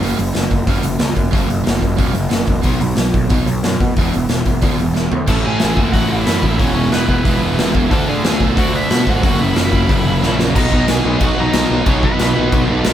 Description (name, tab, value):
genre	punk rock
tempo	182 BPM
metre	4/4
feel	straight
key	unclear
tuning	A4 = 440 Hz
part	crunchy overdriven guitar	riff	0.0-12.9 s	E2 to D4	-23 LUFS	left 8 dB	none
part	overdriven semi-hollow guitar	riff	0.0-12.9 s	F#2 to E4	-20 LUFS	right 6 dB	none
part	fuzz picked electric bass	bass	0.0-12.9 s	E1 to D3	-20 LUFS	equal	overdrive
part	big rock drum kit	drums	0.0-12.9 s	crash cymbal, hi-hat, kick drum, snare drum, toms	-17 LUFS	equal	none
part	smooth overdriven lead guitar	melody	5.3-12.9 s	B3 to A5	-22 LUFS	equal	none
part	scooped high-gain guitar	riff	5.3-12.9 s	E2 to D4	-23 LUFS	left 1 dB	distortion
room	light reverb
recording	band playing live in one room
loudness	-13 LUFS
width	side -11 dB against mid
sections	0.0-5.3 A section; 5.3-10.5 B section; 10.5-12.9 C section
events	drum fill 5.0-5.3, 10.2-10.5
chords	0.0 F#; 2.6 B5; 4.0 E5; 5.3 A; 6.6 E; 7.9 D; 9.2 F#7; 10.5 B